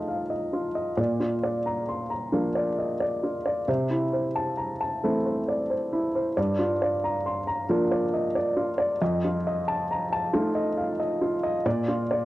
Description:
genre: neoclassical minimalist piano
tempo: 45 BPM (dotted quarters)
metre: 6/8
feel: rubato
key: Bb major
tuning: A4 = 440 Hz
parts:
  - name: warm upright piano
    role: solo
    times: 0.0-12.2 s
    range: F2 to C6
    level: -24 LUFS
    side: equal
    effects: cassette tape
room: light reverb, small room ambience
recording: home recording on cassette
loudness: -24 LUFS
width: side -16 dB against mid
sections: 0.0-12.2 A section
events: none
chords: 0.0 F7; 1.0 Bb; 3.7 C6; 6.4 Gm7; 9.0 F7; 11.7 Bb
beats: | 0.98 2.33 | 3.68 5.03 | 6.37 7.69 | 9.01 10.34 | 11.65

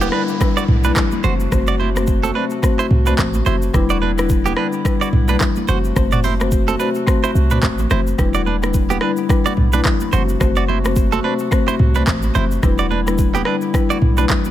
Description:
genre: afrobeats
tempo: 108 BPM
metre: 4/4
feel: swing 58% on 16ths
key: E minor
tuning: A4 = 440 Hz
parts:
  - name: warm woodwind section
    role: sustained chords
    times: 0.0-14.5 s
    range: C3 to F#4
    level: -28 LUFS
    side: equal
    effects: sidechain pumping
  - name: direct-recorded clean electric guitar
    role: riff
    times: 0.0-14.3 s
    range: B3 to D5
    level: -23 LUFS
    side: right 8 dB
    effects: ping-pong delay
  - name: warm 808-style bass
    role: bass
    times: 0.0-14.3 s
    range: E1 to C2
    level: -18 LUFS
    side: equal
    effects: none
  - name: afro-pop drum kit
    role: drums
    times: 0.0-14.5 s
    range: handclaps, hi-hat, kick drum, rim click, shaker, toms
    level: -19 LUFS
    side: equal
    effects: none
  - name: congas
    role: percussion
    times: 0.0-14.5 s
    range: none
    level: -28 LUFS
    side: right 7 dB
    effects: none
  - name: downlifter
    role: sound effects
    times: 0.0-3.7 s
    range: none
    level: -31 LUFS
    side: equal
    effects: none
  - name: marimba with medium mallets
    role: accompaniment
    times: 0.1-14.4 s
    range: G3 to C5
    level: -21 LUFS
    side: left 6 dB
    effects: none
room: digital ambience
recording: none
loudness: -14 LUFS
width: side -12 dB against mid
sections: 0.0-8.2 A section; 8.2-14.5 B section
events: none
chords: 0.0 Em7; 1.2 F#dim; 3.7 Em7; 5.7 F#dim; 8.2 Em7; 10.1 F#dim; 12.6 Em7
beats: 0.41 0.96 | 1.52 2.07 2.63 3.19 | 3.74 4.30 4.85 5.41 | 5.96 6.52 7.07 7.63 | 8.19 8.74 9.30 9.85 | 10.41 10.96 11.52 12.07 | 12.63 13.19 13.74 14.30

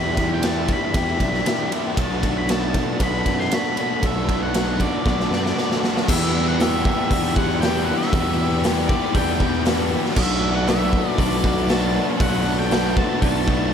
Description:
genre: rock, shoegaze and dream pop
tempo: 117 BPM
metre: 4/4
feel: straight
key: E minor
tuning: A4 = 440 Hz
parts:
  - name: octave-fuzz lead guitar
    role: melody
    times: 0.0-13.7 s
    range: D5 to C6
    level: -28 LUFS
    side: right 1 dB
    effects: distortion, slapback echo
  - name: string machine, cellos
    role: sustained chords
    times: 0.0-13.7 s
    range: G4 to B5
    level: -32 LUFS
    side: right 1 dB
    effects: none
  - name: electric guitar through a small old amp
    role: arpeggios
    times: 0.0-13.7 s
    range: E3 to G4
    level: -32 LUFS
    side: right 1 dB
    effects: none
  - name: biting overdriven guitar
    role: riff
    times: 0.0-13.7 s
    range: E2 to G4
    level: -25 LUFS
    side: left 11 dB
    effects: wide subtle chorus
  - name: overdriven electric guitar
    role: riff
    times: 0.0-13.7 s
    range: E2 to G4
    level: -28 LUFS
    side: right 11 dB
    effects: reverse reverb
  - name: fuzz picked electric bass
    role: bass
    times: 0.0-13.7 s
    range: B1 to F#2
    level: -25 LUFS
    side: equal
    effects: overdrive
  - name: raw garage drum kit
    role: drums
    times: 0.2-13.6 s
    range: crash cymbal, hi-hat, kick drum, ride cymbal, snare drum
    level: -22 LUFS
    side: equal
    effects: none
room: light reverb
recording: none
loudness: -18 LUFS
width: side -8 dB against mid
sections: 0.0-6.1 A section; 6.1-13.7 B section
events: drum fill 5.1-6.1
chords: 0.0 Em7; 2.0 Bm7; 6.1 Em7; 10.2 Bm7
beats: 0.43 0.95 1.46 | 1.98 2.49 3.00 3.52 | 4.03 4.55 5.06 5.57 | 6.08 6.60 7.11 7.62 | 8.13 8.64 9.15 9.66 | 10.17 10.68 11.19 11.70 | 12.21 12.71 13.22 13.73

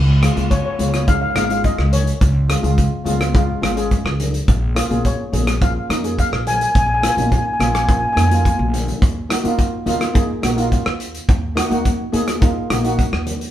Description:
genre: calypso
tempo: 106 BPM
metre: 4/4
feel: straight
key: Db major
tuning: A4 = 442 Hz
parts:
  - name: upright bass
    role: bass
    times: 0.0-13.4 s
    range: Ab1 to F2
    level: -20 LUFS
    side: equal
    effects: none
  - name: steel pan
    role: accompaniment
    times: 0.2-13.4 s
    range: Ab3 to Ab4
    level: -22 LUFS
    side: left 1 dB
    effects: none
  - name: loose indie drum kit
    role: drums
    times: 0.2-13.5 s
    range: hi-hat, kick drum, rim click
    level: -19 LUFS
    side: equal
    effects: none
  - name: congas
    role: percussion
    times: 0.4-13.4 s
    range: none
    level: -27 LUFS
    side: left 1 dB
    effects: none
  - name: steel pan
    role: melody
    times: 0.5-8.6 s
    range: Db5 to Ab5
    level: -21 LUFS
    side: left 1 dB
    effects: none
room: moderate studio reverb, RT60 0.9 s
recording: band playing live in one room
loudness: -15 LUFS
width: side -12 dB against mid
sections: 0.0-13.5 A section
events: drum fill 8.4-9.0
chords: 0.0 Db; 4.5 Bbm7; 9.0 Ebm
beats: 0.51 1.08 1.65 | 2.21 2.78 3.35 3.92 | 4.48 5.05 5.62 6.18 | 6.75 7.32 7.88 8.45 | 9.02 9.58 10.15 10.71 | 11.28 11.85 12.41 12.98

